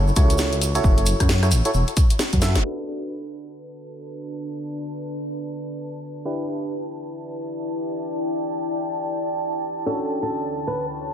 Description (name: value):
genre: UK garage, two-step garage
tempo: 133 BPM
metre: 4/4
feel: swing 60% on 16ths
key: unclear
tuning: A4 = 442 Hz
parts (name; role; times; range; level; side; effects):
- dark detuned saw bass; bass; 0.0-2.6 s; E1 to F#2; -20 LUFS; equal; none
- tube shaker; percussion; 0.1-2.6 s; none; -32 LUFS; right 4 dB; none
- FM electric piano; stabs; 0.2-11.1 s; C#4 to E5; -29 LUFS; right 1 dB; chorus, low-pass filter, ping-pong delay
- electronic kick drum; drums; 0.2-2.4 s; none; -18 LUFS; equal; none
- house drum kit; drums; 0.2-2.6 s; hi-hat, rim click, snare drum; -26 LUFS; left 1 dB; low-pass filter on snare, low-pass filter on hats, low-pass filter on room
- warm analog pad; sustained chords; 2.6-11.1 s; A5; -34 LUFS; right 2 dB; chorus, sidechain pumping
- deep dark ambient pad; texture; 4.0-11.1 s; D3 to A5; -28 LUFS; left 1 dB; chorus, built-in reverb, sidechain pumping
- flamenco guitar; melody; 9.9-10.9 s; A4 to B4; -28 LUFS; equal; analog delay
room: light reverb, digital ambience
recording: low-pass filter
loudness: -21 LUFS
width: side -9 dB against mid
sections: 0.0-2.6 A section; 2.6-11.1 B section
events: drum fill 2.4; band accent 2.5; filter sweep 2.6-11.1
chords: 0.0 F#m7; 2.6 Bm7; 6.3 Em7; 9.9 Dmaj7